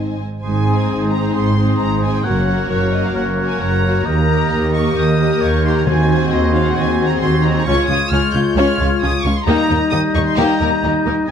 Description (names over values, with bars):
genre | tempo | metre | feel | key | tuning
cinematic | 133 BPM | 4/4 | straight | Ab major | A4 = 441 Hz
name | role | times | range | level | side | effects
rich symphonic violin section | melody | 0.0-11.3 s | Db5 to G6 | -24 LUFS | left 1 dB | none
warm clarinet | second line | 0.0-11.3 s | Eb4 to Bb4 | -27 LUFS | left 2 dB | none
warm studio violin section | second line | 0.0-11.1 s | Bb3 to Ab5 | -27 LUFS | left 3 dB | none
warm symphonic viola section | accompaniment | 0.0-11.3 s | Bb3 to G4 | -24 LUFS | equal | none
mellow French horn section | sustained chords | 0.0-11.3 s | G3 to G4 | -21 LUFS | left 6 dB | none
warm symphonic cello section | bass | 0.0-11.3 s | Db2 to Ab2 | -21 LUFS | right 1 dB | none
warm symphonic double bass section | bass | 0.0-11.3 s | Gb1 to Eb2 | -20 LUFS | right 3 dB | none
mellow hollow silver concert flute | second line | 0.4-11.3 s | Eb6 to Ab6 | -26 LUFS | left 2 dB | none
warm oboe | second line | 0.4-11.3 s | C5 to Eb5 | -27 LUFS | right 1 dB | none
timpani | percussion | 5.9-6.5 s | Eb3 | -22 LUFS | equal | none
room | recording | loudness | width
light reverb | none | -14 LUFS | side -8 dB against mid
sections
0.4-11.3 A section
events
none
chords
0.4 Ab; 2.3 Gb; 4.1 Eb; 5.9 Ab7/Eb; 7.7 Db; 9.5 Eb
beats
| 0.44 0.90 1.35 1.80 | 2.26 2.71 3.16 3.61 | 4.07 4.52 4.97 5.42 | 5.87 6.32 6.77 7.22 | 7.67 8.12 8.57 9.03 | 9.48 9.93 10.38 10.84 | 11.29